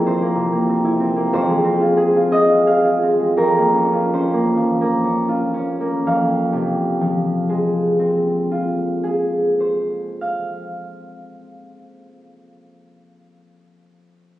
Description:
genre	classical, solo harp piece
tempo	56-96 BPM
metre	3/4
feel	rubato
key	F minor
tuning	A4 = 440 Hz
part	concert harp	solo	0.0-13.3 s	F2 to F5	-16 LUFS	equal	none
room	moderate recital hall reverb, RT60 1.5 s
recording	recorded on a phone in the room, studio reverb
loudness	-16 LUFS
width	side -14 dB against mid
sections	0.0-6.0 A section; 6.0-11.8 B section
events	slowing down 0.4-6.0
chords	0.0 C7/F; 1.3 Fm; 3.4 Bbm/F; 6.0 Fm

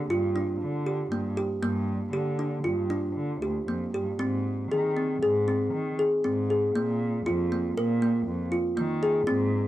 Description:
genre	contemporary instrumental, chamber music in an uneven meter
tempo	118 BPM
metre	5/4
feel	straight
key	unclear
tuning	A4 = 440 Hz
part	kalimba	arpeggios	0.0-9.7 s	Bb3 to Bb4	-26 LUFS	equal	none
part	muted cello	bass	0.0-9.7 s	D2 to Eb3	-30 LUFS	equal	none
room	moderate studio reverb, RT60 0.6 s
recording	dark, warm production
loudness	-25 LUFS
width	side -14 dB against mid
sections	0.0-4.2 A section; 4.2-9.7 B section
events	none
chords	0.0 Gm7; 4.2 Ab; 6.7 Bbsus4

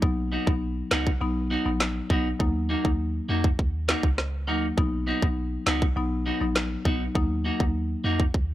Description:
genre	dancehall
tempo	101 BPM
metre	4/4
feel	straight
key	unclear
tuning	A4 = 440 Hz
part	marimba with medium mallets	accompaniment	0.0-7.8 s	F#3 to D#4	-30 LUFS	left 2 dB	none
part	clean 808-style bass	bass	0.0-8.5 s	Bb1 to F2	-30 LUFS	equal	none
part	island pop drum kit	drums	0.0-8.5 s	handclaps, kick drum, rim click, snare drum	-24 LUFS	equal	none
part	clean electric guitar	arpeggios	0.3-8.2 s	Bb3 to F#4	-29 LUFS	equal	none
room	digital ambience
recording	dry, gritty hardware recording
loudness	-23 LUFS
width	side -14 dB against mid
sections	0.0-8.5 A section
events	none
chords	0.0 B; 2.4 Ebm; 4.8 B; 7.2 Ebm

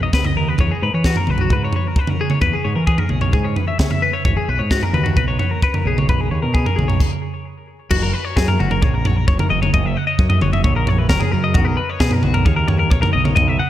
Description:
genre	math rock and midwest emo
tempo	132 BPM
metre	4/4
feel	straight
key	unclear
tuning	A4 = 440 Hz
part	twelve-string electric guitar	arpeggios	0.0-13.7 s	F#4 to F#5	-21 LUFS	left 5 dB	analog delay, slapback echo
part	growling fingered electric bass	bass	0.0-13.6 s	F#1 to E3	-20 LUFS	equal	overdrive
part	crisp fusion drum kit	drums	0.1-13.5 s	crash cymbal, kick drum, snare drum, toms	-18 LUFS	right 1 dB	none
room	light reverb, small room ambience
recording	none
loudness	-15 LUFS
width	side -12 dB against mid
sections	0.0-7.9 A section; 7.9-13.7 B section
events	stop 7.0-7.9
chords	0.0 Bmaj9; 0.6 E6; 4.3 G#m7; 5.9 Bmaj7sus2; 7.0 N.C.; 7.9 F#; 11.6 Bmaj9

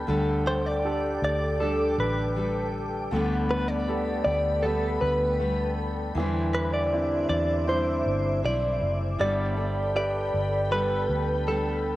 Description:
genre	pop ballad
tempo	79 BPM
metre	4/4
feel	straight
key	G major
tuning	A4 = 440 Hz
part	bright grand piano	accompaniment	0.0-12.0 s	D3 to B4	-31 LUFS	right 2 dB	none
part	glassy FM pad	sustained chords	0.0-12.0 s	A4 to D6	-35 LUFS	left 1 dB	ensemble chorus, built-in reverb
part	fingerpicked steel-string acoustic guitar	arpeggios	0.0-12.0 s	D3 to C5	-33 LUFS	left 2 dB	none
part	vintage muted fingered electric bass	bass	0.0-12.0 s	F#1 to E2	-29 LUFS	equal	none
part	direct-recorded clean electric guitar	melody	0.5-12.0 s	A4 to D5	-28 LUFS	equal	harmonic tremolo
room	moderate spring reverb, RT60 2.0 s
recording	home recording on cassette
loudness	-24 LUFS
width	side -16 dB against mid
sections	0.0-12.0 A section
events	none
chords	0.1 Dsus4; 3.1 Gadd9/D; 6.2 Cadd9/E; 9.2 Gadd9

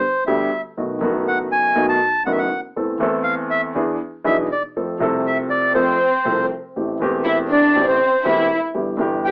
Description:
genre	tango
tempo	120 BPM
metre	4/4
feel	rubato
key	A minor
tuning	A4 = 438 Hz
part	bandoneon	melody	0.0-9.3 s	C5 to A5	-21 LUFS	equal	cassette tape
part	warm baby grand piano	accompaniment	0.3-9.3 s	E1 to A4	-23 LUFS	equal	cassette tape
part	dark studio violin section	second line	5.7-9.3 s	C4 to G4	-22 LUFS	equal	cassette tape
room	wet small room reverb, RT60 0.5 s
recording	home recording on cassette, AM radio sound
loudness	-19 LUFS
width	mono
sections	0.0-9.3 A section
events	none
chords	0.0 G; 0.8 B7; 2.8 Am/E; 3.7 E7; 4.7 F; 6.7 Am7; 8.7 Em/G

